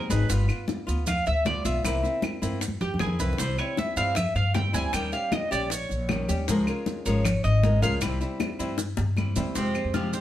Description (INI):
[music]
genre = latin, Cuban son and guajira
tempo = 156 BPM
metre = 4/4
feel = straight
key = unclear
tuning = A4 = 440 Hz
[part]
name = flamenco guitar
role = accompaniment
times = 0.0-10.2 s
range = C3 to Bb4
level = -30 LUFS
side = left 1 dB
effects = none
[part]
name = Cuban tres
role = arpeggios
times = 0.0-10.2 s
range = C4 to Ab5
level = -29 LUFS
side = right 1 dB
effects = none
[part]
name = upright bass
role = bass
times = 0.0-10.2 s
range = G1 to G2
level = -27 LUFS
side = left 1 dB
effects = none
[part]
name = bongos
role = percussion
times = 0.1-10.2 s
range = none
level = -35 LUFS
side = left 4 dB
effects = none
[part]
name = congas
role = percussion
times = 0.1-10.2 s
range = none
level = -33 LUFS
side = left 1 dB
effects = none
[part]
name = maracas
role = percussion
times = 0.1-10.2 s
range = none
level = -38 LUFS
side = right 5 dB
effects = none
[part]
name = claves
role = percussion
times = 0.5-9.9 s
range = none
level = -37 LUFS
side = equal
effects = none
[sound]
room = moderate stone room reverb, RT60 1.0 s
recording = band playing live in one room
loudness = -23 LUFS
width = side -12 dB against mid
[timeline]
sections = 0.0-9.6 A section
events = Cuban tres solo 0.0-9.6; drum fill 2.4-3.4, 8.8-9.6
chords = 0.3 G7; 1.8 C7; 3.4 C; 4.9 Eb7; 6.5 Db6; 8.0 C; 9.6 Fmadd9